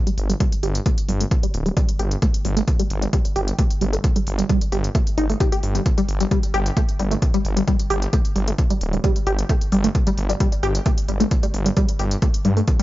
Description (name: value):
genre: driving peak-time techno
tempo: 132 BPM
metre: 4/4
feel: straight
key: unclear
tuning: A4 = 441 Hz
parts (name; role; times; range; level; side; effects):
- tight sequenced synth; riff; 0.1-12.8 s; G3 to G4; -24 LUFS; equal; chorus, phaser, sidechain pumping, analog delay
- electronic hi-hat; drums; 0.1-12.8 s; none; -32 LUFS; equal; overdrive
- detuned saw bass; bass; 0.2-12.6 s; D1 to G2; -22 LUFS; equal; tube saturation, sidechain pumping
- electronic kick drum; drums; 0.4-12.8 s; none; -20 LUFS; equal; none
room: little or no reverb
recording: dry, gritty hardware recording, nothing above 7.5 kHz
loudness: -18 LUFS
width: side -16 dB against mid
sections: 0.0-12.8 A section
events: filter sweep on synth arpeggio sound 0.0-12.8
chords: 0.0 G5